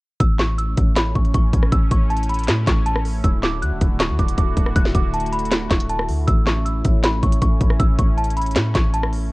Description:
hip hop, trap; 158 BPM; 4/4; half-time; A major; A4 = 440 Hz
small celesta; melody; 0.2-9.1 s; A5 to F#6; -26 LUFS; equal; low-pass filter
sweeping resonant pad; sustained chords; 0.2-9.3 s; D3 to F#4; -29 LUFS; right 1 dB; chorus
warm 808-style bass; bass; 0.2-9.3 s; D1 to A2; -21 LUFS; equal
trap drum kit; drums; 0.2-9.2 s; handclaps, hi-hat, kick drum, rim click, snare drum; -19 LUFS; equal
digital ambience; worn, warbling old tape, cassette tape, warbly pitch drift; -16 LUFS; side -22 dB against mid
0.2-9.3 A section
0.2 A; 3.2 Dadd9; 6.3 A

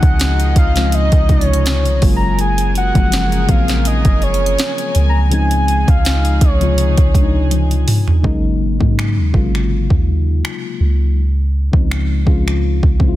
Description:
contemporary R&B; 82 BPM; 4/4; swing 54% on 16ths; Db major; A4 = 440 Hz
soft octave-layered synth lead; melody; 0.0-7.5 s; Db5 to Bb5; -20 LUFS; equal; chorus, digital delay
mellow FM electric piano; accompaniment; 0.0-13.2 s; C3 to F4; -20 LUFS; left 4 dB; chorus
warm studio string section; sustained chords; 0.0-8.2 s; Db3 to Ab5; -26 LUFS; equal
soft 808-style bass; bass; 0.0-13.2 s; Gb1 to Ab2; -15 LUFS; equal
smooth R&B drum kit; drums; 0.0-13.2 s; finger snaps, hi-hat, kick drum, snare drum, toms; -16 LUFS; equal; overdrive, soft clipping on snare
digital ambience; dense, heavily limited modern master; -12 LUFS; side -15 dB against mid
0.0-8.2 A section; 8.2-13.2 B section
drum fill 7.5-8.2
0.0 Dbmaj9; 2.0 Gbmaj9; 5.3 Dbmaj7; 8.2 Ab9sus4; 11.2 Dbmaj9

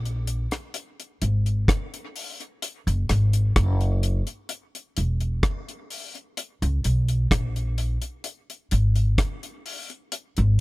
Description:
dub reggae; 64 BPM; 4/4; straight; C# dorian; A4 = 441 Hz
upright bass; bass; 0.0-10.6 s; E1 to C#2; -21 LUFS; equal
deep reggae drum kit; drums; 0.1-10.6 s; hi-hat, kick drum, rim click; -26 LUFS; equal
little or no reverb; -22 LUFS; side -21 dB against mid
0.0-10.6 A section

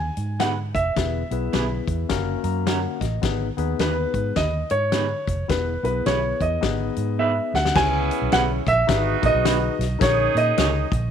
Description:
uptempo 1960s-style soul; 106 BPM; 4/4; swing 62% on 8ths; G# minor; A4 = 440 Hz
warm baby grand piano; melody; 0.0-11.1 s; B4 to G#5; -24 LUFS; right 1 dB
vintage muted fingered electric bass; bass; 0.0-11.1 s; E1 to A#2; -26 LUFS; right 2 dB
natural country drum kit; drums; 0.2-11.0 s; crash cymbal, hi-hat, kick drum, snare drum; -26 LUFS; left 4 dB
electric guitar through a small old amp; stabs; 0.4-10.7 s; A#3 to C#5; -30 LUFS; right 13 dB; tape echo
barky tine electric piano; accompaniment; 1.0-10.9 s; A#3 to A#5; -28 LUFS; left 13 dB; fast stereo tremolo
clear horn section; second line; 7.8-10.9 s; B3 to G#4; -28 LUFS; right 14 dB
studio reverb; 1960s-style stereo with parts hard left and right; -20 LUFS; side -8 dB against mid
0.0-7.8 A section; 7.8-11.1 B section
tine electric piano fill 2.1-3.2; drum fill 7.2-7.8
0.0 G#m; 1.0 E; 2.1 F#; 3.2 G#m; 5.5 E; 6.6 G#m; 7.8 C#m7; 8.9 G#m7; 10.0 D#7sus4/A#

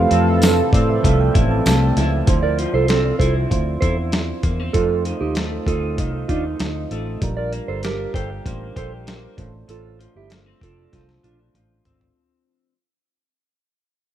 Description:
indie pop, bedroom pop; 97 BPM; 4/4; straight; F major; A4 = 440 Hz
warm velvety synth lead; melody; 0.0-1.0 s; F5; -24 LUFS; right 2 dB; wide subtle chorus, tape echo
electric guitar through a small old amp; accompaniment; 0.0-12.7 s; F2 to G4; -27 LUFS; left 3 dB; wide subtle chorus, vibrato effect
soft electric-piano-like synth keys; accompaniment; 0.0-12.2 s; E3 to A5; -27 LUFS; right 6 dB; chorus
warm analog pad; sustained chords; 0.0-2.2 s; C3 to A4; -22 LUFS; right 3 dB; chorus
vintage muted fingered electric bass; bass; 0.0-12.1 s; F1 to A2; -22 LUFS; equal
dusty soul sampler-style drum kit; drums; 0.1-12.2 s; hi-hat, kick drum, snare drum, toms; -21 LUFS; equal; overdrive
tambourine; percussion; 0.4-1.8 s; -31 LUFS; right 1 dB
mellow electric guitar; second line; 2.4-11.4 s; D4 to D5; -24 LUFS; right 6 dB; wide subtle chorus, tape echo
little or no reverb; rough home demo mix; -17 LUFS; side -11 dB against mid
0.0-2.3 A section; 2.3-12.2 B section
synth keys fill 0.4-2.3; fade-out 2.3-12.2; drum fill 10.9-12.2
0.0 Fmaj7; 2.3 Dm9; 4.7 F7; 7.2 Bb6; 9.4 F6

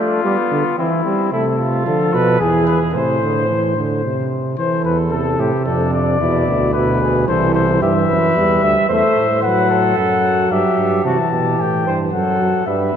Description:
classical, imitative canzona for brass ensemble; 111 BPM; 3/4; straight; A minor; A4 = 440 Hz
mellow trumpet; melody; 0.0-13.0 s; E4 to A5; -19 LUFS; left 6 dB
warm flugelhorn; second line; 0.0-13.0 s; B3 to E5; -21 LUFS; right 3 dB
warm trombone; accompaniment; 0.0-13.0 s; B2 to B3; -19 LUFS; right 2 dB
warm bass trombone; bass; 1.3-12.9 s; C2 to D3; -21 LUFS; right 2 dB
wet church reverb, RT60 3.5 s; dark, warm production; -14 LUFS; side -8 dB against mid
0.0-1.3 A section; 1.3-4.6 B section; 4.6-11.1 C section; 11.1-13.0 B section
0.0 G; 0.8 C/E; 1.3 Am/C; 1.9 Bdim/D; 2.4 E; 2.9 Am; 4.6 Am/E; 5.7 Dm/F; 6.2 E; 7.3 Am/C; 7.8 Em; 8.9 Am/E; 9.4 B5; 10.5 Em/G; 11.1 C (rootless); 12.1 F#m

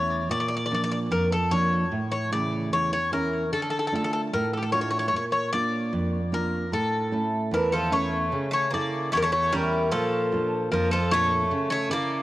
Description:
greek folk; 75 BPM; 2/4; straight; A4 = 440 Hz
Greek bouzouki; melody; 0.0-12.2 s; G4 to D5; -25 LUFS; left 2 dB; cassette tape, tape echo
nylon-string guitar; accompaniment; 0.0-12.2 s; E2 to A4; -27 LUFS; right 2 dB
Greek bouzouki; second line; 7.5-12.2 s; E3 to Bb3; -30 LUFS; right 2 dB
moderate lush hall reverb, RT60 3.0 s; home recording on cassette; -23 LUFS; side -16 dB against mid
0.0-8.3 A section; 8.3-12.2 A section
0.3 Bb; 1.9 A; 3.5 Dm; 5.1 Bb; 6.7 A; 9.9 Bb; 11.5 A

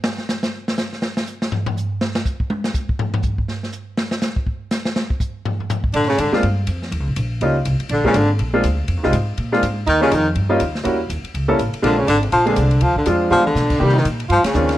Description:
jazz, small-group swing and bop; 244 BPM; 4/4; swing 60% on 8ths; Bb mixolydian; A4 = 439 Hz
open jazz drum kit; drums; 0.0-14.7 s; crash cymbal, hi-hat, kick drum, ride cymbal, snare drum, toms; -24 LUFS; equal
clear tenor saxophone; second line; 5.9-14.8 s; Db4 to G4; -22 LUFS; right 4 dB
upright bass; bass; 5.9-14.8 s; Ab1 to C3; -20 LUFS; equal
warm baritone saxophone; melody; 6.0-14.8 s; Db3 to G3; -18 LUFS; left 2 dB
clear baby grand piano; accompaniment; 6.3-14.8 s; Eb3 to A4; -19 LUFS; equal
light reverb; -17 LUFS; side -14 dB against mid
0.0-5.9 A section; 5.9-14.8 B section
drum solo 0.0-5.9; drum fill 13.3; band accent 14.4
0.0 N.C.; 5.9 Bb7; 6.9 Eb7; 7.9 Bb7; 8.9 Fm7; 9.4 Bb7; 9.9 Eb7; 10.8 Edim7; 11.8 Bb7; 12.8 Dm7b5; 13.3 G7b9; 13.8 Cm7

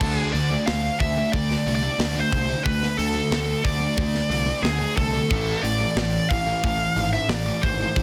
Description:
heavy metal; 90 BPM; 4/4; straight; A4 = 440 Hz
high-gain lead guitar; melody; 0.0-8.0 s; G#4 to F5; -28 LUFS; equal; distortion
scooped high-gain guitar; riff; 0.0-8.0 s; A2 to D4; -31 LUFS; equal; distortion
sludgy distorted guitar; riff; 0.0-8.0 s; A2 to D4; -32 LUFS; equal; overdrive
fuzz picked electric bass; bass; 0.0-8.0 s; G#1 to D2; -29 LUFS; equal; overdrive
tight metal drum kit; drums; 0.0-8.0 s; crash cymbal, hi-hat, kick drum, snare drum; -30 LUFS; equal; soft clipping on kick
light reverb; dense, heavily limited modern master; -23 LUFS; mono
0.0-8.0 A section
0.0 D5; 5.3 A5

